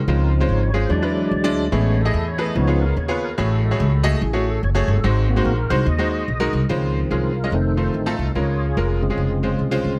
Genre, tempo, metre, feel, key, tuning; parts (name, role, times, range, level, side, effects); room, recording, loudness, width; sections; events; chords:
gospel; 145 BPM; 4/4; swing 60% on 8ths; Db major; A4 = 440 Hz
tonewheel organ; sustained chords; 0.0-10.0 s; Db3 to Eb5; -27 LUFS; equal; slow rotary speaker, overdrive, chorus vibrato
upright bass; bass; 0.0-10.0 s; F1 to E2; -23 LUFS; equal
bright upright piano; accompaniment; 0.1-9.9 s; Ab2 to Eb5; -26 LUFS; equal
light reverb, small room reverb; -20 LUFS; mono
0.0-6.7 A section; 6.7-10.0 B section
tonewheel organ solo 0.0-6.7, 6.7-10.0
0.1 Dbmaj7; 0.9 E7; 1.7 Amaj7; 2.6 Db7; 3.4 Gbmadd9/A; 5.0 Ab7; 6.7 Dbmaj7; 7.5 F7; 8.4 Bbm7